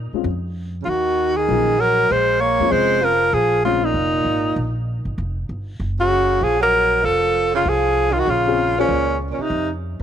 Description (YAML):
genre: jazz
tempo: 195 BPM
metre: 4/4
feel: swing 61% on 8ths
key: Bb minor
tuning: A4 = 441 Hz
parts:
  - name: upright bass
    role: bass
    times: 0.0-10.0 s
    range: F1 to Bb2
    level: -25 LUFS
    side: equal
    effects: none
  - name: dark baby grand piano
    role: accompaniment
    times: 0.1-3.8, 8.5-10.0 s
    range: Gb3 to C5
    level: -25 LUFS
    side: left 14 dB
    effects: none
  - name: clear alto saxophone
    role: melody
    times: 0.8-9.7 s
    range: Db4 to Db5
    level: -18 LUFS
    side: left 2 dB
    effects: none
  - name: clear tenor saxophone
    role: second line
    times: 0.8-9.7 s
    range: Bb2 to Bb3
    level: -24 LUFS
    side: right 12 dB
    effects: none
room: light reverb, small room ambience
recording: 1960s-style stereo with parts hard left and right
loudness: -16 LUFS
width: side -9 dB against mid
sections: 0.0-10.0 A section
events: none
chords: 0.0 Bbm7; 0.9 Ebm7; 2.1 Bbm7; 5.8 Gb; 7.0 F; 8.3 Bbm7; 9.5 F7(no3)